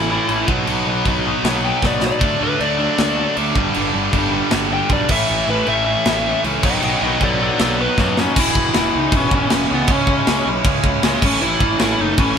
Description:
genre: punk rock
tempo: 156 BPM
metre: 4/4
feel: straight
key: unclear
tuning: A4 = 440 Hz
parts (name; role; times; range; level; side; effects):
- biting lead guitar; melody; 0.0-12.4 s; G#3 to G5; -20 LUFS; left 2 dB; overdrive
- biting overdriven guitar; riff; 0.0-8.2 s; G2 to D4; -23 LUFS; equal; none
- overdriven semi-hollow guitar; riff; 0.0-12.4 s; G2 to E4; -23 LUFS; left 6 dB; none
- raw garage guitar; riff; 0.0-12.4 s; E2 to D4; -24 LUFS; right 8 dB; overdrive
- fuzz picked electric bass; bass; 0.0-12.3 s; E1 to F#2; -25 LUFS; equal; overdrive
- tight metal drum kit; drums; 0.3-12.3 s; crash cymbal, kick drum, snare drum; -20 LUFS; right 1 dB; none
room: light reverb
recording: band playing live in one room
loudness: -15 LUFS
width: side -7 dB against mid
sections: 0.0-8.4 A section; 8.4-12.4 B section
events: half time 0.0-8.4; lead electric guitar solo 0.0-8.4; drum fill 1.8-2.2, 8.0-8.4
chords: 0.5 B; 2.2 D; 3.6 G; 5.1 A; 6.6 B; 8.4 E; 9.9 C#m; 11.2 A

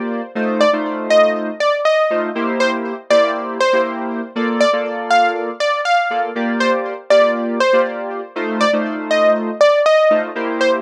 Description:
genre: pop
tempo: 120 BPM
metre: 4/4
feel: straight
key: unclear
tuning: A4 = 440 Hz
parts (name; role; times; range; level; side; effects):
- chorused polysynth; accompaniment; 0.0-10.8 s; A3 to D5; -22 LUFS; equal; none
- plucky unison lead; melody; 0.6-10.7 s; C5 to F5; -16 LUFS; equal; tape echo
room: moderate small room reverb, RT60 0.6 s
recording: rough home demo mix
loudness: -16 LUFS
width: mono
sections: 0.0-10.8 A section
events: none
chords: 0.4 F7; 2.4 C7; 4.4 Bbmaj7; 6.4 Gm7; 8.4 F7

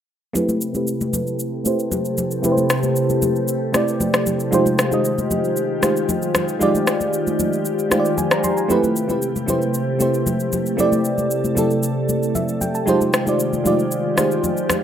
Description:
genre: amapiano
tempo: 115 BPM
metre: 4/4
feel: straight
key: A minor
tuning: A4 = 441 Hz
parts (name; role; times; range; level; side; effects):
- mellow FM electric piano; accompaniment; 0.3-14.8 s; Ab3 to C6; -20 LUFS; right 1 dB; chorus, low-pass filter
- glassy FM pad; sustained chords; 0.6-14.8 s; C3 to A4; -23 LUFS; left 1 dB; ensemble chorus, built-in reverb, low-pass filter
- electronic shaker and rim click; drums; 0.4-14.8 s; none; -23 LUFS; left 1 dB; none
- congas; percussion; 0.4-14.8 s; none; -26 LUFS; left 1 dB; none
room: light reverb, digital ambience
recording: rough home demo mix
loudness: -17 LUFS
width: side -9 dB against mid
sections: 0.4-8.7 A section; 8.7-14.8 B section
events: filter sweep 0.4-8.7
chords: 0.4 Am9; 4.5 Fm9; 8.7 Am9; 12.9 Fm9

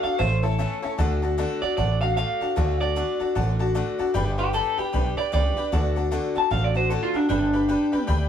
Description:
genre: rockabilly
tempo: 152 BPM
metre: 4/4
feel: swing 61% on 8ths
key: D major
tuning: A4 = 440 Hz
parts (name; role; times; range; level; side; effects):
- electric guitar through a small old amp; melody; 0.0-8.1 s; D4 to A5; -24 LUFS; right 1 dB; none
- picked acoustic archtop guitar; accompaniment; 0.0-8.3 s; A2 to B4; -28 LUFS; left 4 dB; none
- tack piano; accompaniment; 0.0-8.2 s; C#5 to B5; -33 LUFS; left 2 dB; none
- upright bass; bass; 0.0-8.3 s; G1 to D2; -24 LUFS; equal; none
room: moderate studio reverb, RT60 0.5 s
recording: band playing live in one room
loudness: -21 LUFS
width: side -9 dB against mid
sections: 1.0-8.3 A section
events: clean electric guitar solo 1.0-8.3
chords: 0.2 A; 1.0 D; 4.1 G; 5.7 D; 7.3 G

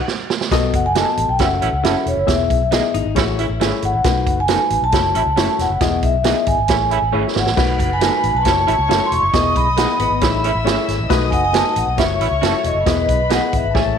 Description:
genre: uptempo 1960s-style soul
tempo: 136 BPM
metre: 4/4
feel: straight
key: E major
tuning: A4 = 440 Hz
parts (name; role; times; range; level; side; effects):
- vibraphone with soft mallets; melody; 0.0-14.0 s; C#5 to C#6; -19 LUFS; equal; slapback echo
- vintage drum kit; drums; 0.1-13.9 s; crash cymbal, hi-hat, kick drum, snare drum; -21 LUFS; right 4 dB; none
- reed electric piano; accompaniment; 0.5-14.0 s; G#3 to F#5; -23 LUFS; left 12 dB; none
- vintage muted fingered electric bass; bass; 0.5-14.0 s; E1 to C#2; -22 LUFS; equal; none
- electric guitar through a small old amp; stabs; 1.0-13.4 s; A3 to A4; -27 LUFS; right 10 dB; none
- mellow horn section; second line; 1.4-13.8 s; E3 to A4; -25 LUFS; right 9 dB; none
- vintage hollow-body jazz guitar; riff; 2.9-4.0, 10.0-11.1 s; B3 to F#4; -27 LUFS; left 13 dB; none
- warm studio violin section; second line; 7.6-14.0 s; A3 to E6; -25 LUFS; left 2 dB; none
room: light reverb, small room reverb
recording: 1960s-style stereo with parts hard left and right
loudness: -14 LUFS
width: side -7 dB against mid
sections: 0.5-14.0 A section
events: drum fill 0.0-0.5, 7.1-7.6, 13.8; band accent 0.0-0.5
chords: 0.0 N.C.; 0.5 B7; 1.4 F#m7; 2.3 Emaj7; 3.2 Amaj7; 4.0 B7; 4.9 F#m7; 5.8 Emaj7; 6.7 Amaj7; 7.6 B7; 8.5 F#m7; 9.3 Emaj7; 10.2 Amaj7; 11.1 B7; 12.0 F#m7; 12.9 Emaj7

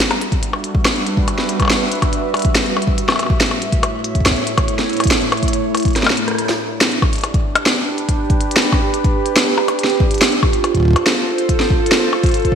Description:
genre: IDM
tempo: 141 BPM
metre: 4/4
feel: straight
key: G lydian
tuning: A4 = 441 Hz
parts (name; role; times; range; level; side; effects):
- warbly tape-like pad; sustained chords; 0.0-12.6 s; A2 to E5; -20 LUFS; right 2 dB; chorus, built-in reverb, phaser
- glitchy drum kit; drums; 0.0-12.5 s; hi-hat, percussion blips, rim click, snare drum; -17 LUFS; left 1 dB; small room ambience, gated reverb, digital delay
- electronic kick drum; drums; 0.3-12.6 s; none; -17 LUFS; equal; small room ambience
room: wet lush hall reverb, RT60 1.7 s, digital ambience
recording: bright 1980s-style digital production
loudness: -14 LUFS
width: side -7 dB against mid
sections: 0.0-6.4 A section; 6.4-12.6 B section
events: kick drops out 6.0-6.4; drum fill 6.0-6.4; band accent 6.3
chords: 0.0 Em7/G; 3.0 A; 6.4 G; 9.8 F

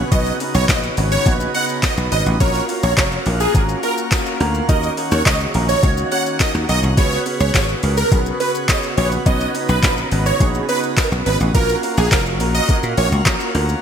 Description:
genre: dance-pop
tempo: 105 BPM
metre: 4/4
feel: straight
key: unclear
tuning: A4 = 440 Hz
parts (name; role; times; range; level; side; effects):
- warm concert grand piano; accompaniment; 0.0-13.8 s; Bb3 to Db5; -23 LUFS; right 2 dB; ensemble chorus, sidechain pumping
- pipe organ, plenum; sustained chords; 0.0-13.8 s; Db3 to Gb4; -27 LUFS; right 1 dB; sidechain pumping
- dry thumbed slap bass; bass; 0.0-13.7 s; F1 to Bb2; -19 LUFS; equal; sidechain pumping
- supersaw chords; melody; 0.1-13.1 s; Ab4 to F#5; -21 LUFS; right 1 dB; phaser, sidechain pumping
- smooth R&B drum kit; drums; 0.1-13.8 s; handclaps, hi-hat, kick drum, shaker, snare drum; -19 LUFS; equal; gated reverb
- tambourine; percussion; 0.7-13.4 s; none; -36 LUFS; left 9 dB; none
room: light reverb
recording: bright 1980s-style digital production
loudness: -15 LUFS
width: side -8 dB against mid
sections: 0.0-13.8 A section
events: drop 0.0-13.8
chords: 0.1 Badd9; 2.4 Gbmaj7; 4.7 Ebm7; 7.0 Db7sus4; 9.3 Badd9; 11.5 Gbmaj7

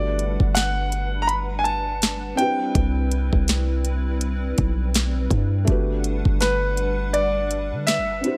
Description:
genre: contemporary R&B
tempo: 82 BPM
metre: 4/4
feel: swing 58% on 16ths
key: G major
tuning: A4 = 439 Hz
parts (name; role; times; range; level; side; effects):
- clear concert grand piano; melody; 0.0-8.4 s; B4 to B5; -26 LUFS; equal; none
- felt-muted upright piano; accompaniment; 0.0-8.4 s; A3 to C5; -33 LUFS; equal; none
- hollow soft pad; sustained chords; 0.0-8.4 s; G3 to F#5; -34 LUFS; equal; ensemble chorus, sidechain pumping
- warm 808-style bass; bass; 0.0-8.2 s; G1 to D3; -26 LUFS; equal; none
- smooth R&B drum kit; drums; 0.2-8.4 s; hi-hat, kick drum, snare drum; -24 LUFS; equal; none
room: little or no reverb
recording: none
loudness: -22 LUFS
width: mono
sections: 0.0-8.4 A section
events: none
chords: 0.0 Gmaj7; 2.4 Cmaj7; 5.7 Gmaj7

